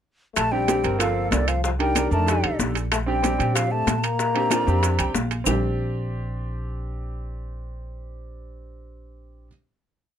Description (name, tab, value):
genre	Afro-Cuban jazz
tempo	188 BPM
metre	4/4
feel	straight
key	Bb major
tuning	A4 = 440 Hz
part	mellow hollow silver concert flute	melody	0.4-5.2 s	D5 to Bb5	-26 LUFS	right 2 dB	none
part	growling trombone	second line	0.4-5.2 s	D3 to Bb3	-29 LUFS	left 8 dB	none
part	upright bass	bass	0.4-9.5 s	G1 to Bb2	-26 LUFS	equal	none
part	bongos	percussion	0.4-5.5 s	none	-31 LUFS	left 7 dB	none
part	claves	percussion	0.4-5.5 s	none	-31 LUFS	left 10 dB	none
part	congas	percussion	0.4-5.5 s	none	-30 LUFS	left 2 dB	none
part	maracas	percussion	0.4-5.5 s	none	-33 LUFS	right 10 dB	none
part	timbales	percussion	0.4-5.5 s	none	-29 LUFS	right 8 dB	none
part	bright upright piano	accompaniment	0.5-9.5 s	Bb3 to G5	-28 LUFS	right 3 dB	none
room	light reverb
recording	close, detailed microphones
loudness	-20 LUFS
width	side -9 dB against mid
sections	0.4-5.5 A section; 5.5-8.0 final chord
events	upright piano fill 4.8-5.5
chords	0.4 Bb69; 1.0 Gm11; 1.6 Cm7; 2.3 F13; 2.9 Bb69